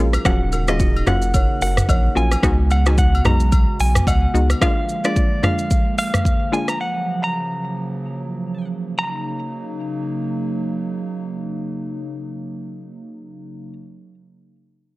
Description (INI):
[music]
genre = afrobeats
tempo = 110 BPM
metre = 4/4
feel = swing 58% on 16ths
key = Eb minor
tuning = A4 = 436 Hz
[part]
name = hollow square pluck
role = accompaniment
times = 0.0-6.7 s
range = F3 to Gb4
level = -24 LUFS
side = left 2 dB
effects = chorus
[part]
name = hollow soft pad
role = sustained chords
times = 0.0-13.7 s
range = Db3 to Gb4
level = -27 LUFS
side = right 1 dB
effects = chorus
[part]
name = buzzing kalimba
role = riff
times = 0.0-2.1 s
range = Eb4 to Db5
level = -30 LUFS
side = right 4 dB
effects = none
[part]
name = warm sub bass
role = bass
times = 0.0-4.5 s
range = Eb1 to Db2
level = -18 LUFS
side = equal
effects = none
[part]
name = afro-pop drum kit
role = drums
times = 0.1-6.8 s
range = hi-hat, kick drum, rim click, shaker, toms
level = -19 LUFS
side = equal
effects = none
[part]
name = agogo bells and woodblock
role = percussion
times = 0.1-4.6 s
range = none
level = -31 LUFS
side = left 3 dB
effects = none
[part]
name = direct-recorded clean electric guitar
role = melody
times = 0.3-13.7 s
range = D5 to Bb5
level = -24 LUFS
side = equal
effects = none
[sound]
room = digital ambience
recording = none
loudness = -17 LUFS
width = side -20 dB against mid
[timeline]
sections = 0.0-9.0 A section; 9.0-13.3 B section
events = none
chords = 0.3 Ebm7; 2.4 Db7sus4; 4.6 Bb7; 6.8 Gbmaj7; 9.0 Ebm7